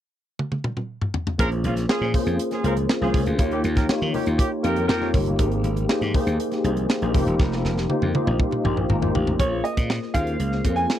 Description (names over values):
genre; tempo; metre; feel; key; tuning
polished 1980s jazz-funk pop; 120 BPM; 4/4; straight; Bb dorian; A4 = 435 Hz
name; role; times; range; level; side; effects
tight funk drum kit; drums; 0.4-11.0 s; hi-hat, kick drum, snare drum, toms; -23 LUFS; equal; none
dark horn section; second line; 1.4-5.1 s; Bb3 to Bb4; -28 LUFS; right 1 dB; none
tine electric piano; accompaniment; 1.4-11.0 s; Bb3 to Bb5; -24 LUFS; left 2 dB; ensemble chorus
slap bass; bass; 1.4-10.9 s; E1 to Eb3; -25 LUFS; equal; none
congas; percussion; 1.8-9.4 s; none; -36 LUFS; right 3 dB; none
bright baby grand piano; melody; 9.4-11.0 s; Db5 to Ab5; -26 LUFS; right 2 dB; slapback echo
room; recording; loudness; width
little or no reverb; dry, close 1970s-style studio recording; -20 LUFS; side -11 dB against mid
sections
0.0-1.4 A section; 1.4-9.4 B section; 9.4-11.0 C section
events
drum fill 0.4-1.4, 7.4-9.4; tine electric piano fill 7.9-9.4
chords
0.0 N.C.; 1.4 Bbm7; 3.4 Eb9; 5.4 Abmaj9; 7.1 F7sus4; 9.4 Bbm7